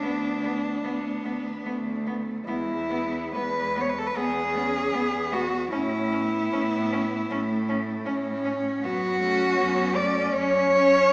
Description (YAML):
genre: classical, lyrical piece for cello ensemble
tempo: 66-80 BPM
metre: 4/4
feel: rubato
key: A major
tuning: A4 = 440 Hz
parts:
  - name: rich cello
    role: melody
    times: 0.0-11.1 s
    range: D4 to D5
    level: -24 LUFS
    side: equal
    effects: none
  - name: clear cello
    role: second line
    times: 0.0-11.1 s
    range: G#3 to C#4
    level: -32 LUFS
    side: equal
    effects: none
  - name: rich cello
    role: accompaniment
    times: 0.0-11.1 s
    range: B3 to C#4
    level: -31 LUFS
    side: equal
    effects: none
  - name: rich cello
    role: bass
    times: 0.0-11.0 s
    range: D2 to A2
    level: -32 LUFS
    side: equal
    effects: none
room: wet recital hall reverb, RT60 1.4 s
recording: heard from further back in the room, small speaker sound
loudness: -23 LUFS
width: side -28 dB against mid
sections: 0.0-11.1 A section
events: none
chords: 0.0 Bm/D; 2.5 E; 5.7 A; 8.8 F#5